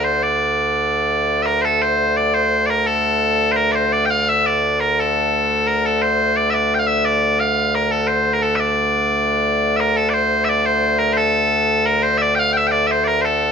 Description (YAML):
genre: medieval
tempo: 115 BPM (dotted quarters)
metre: 6/8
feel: straight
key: unclear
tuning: A4 = 439 Hz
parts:
  - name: loud bright bagpipes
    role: solo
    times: 0.0-13.5 s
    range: D2 to G5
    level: -15 LUFS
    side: equal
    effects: none
room: moderate stone room reverb, RT60 1.0 s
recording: band playing live in one room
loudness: -15 LUFS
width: side -6 dB against mid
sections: 0.0-1.3 A section; 1.3-9.6 B section; 9.6-13.5 B section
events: speeding up 0.0-13.5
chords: none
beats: | 0.23 0.76 | 1.28 1.81 | 2.34 2.87 | 3.39 3.92 | 4.44 4.96 | 5.49 6.01 | 6.53 7.05 | 7.57 8.09 | 8.61 9.12 | 9.64 10.16 | 10.67 11.19 | 11.70 12.21 | 12.73 13.24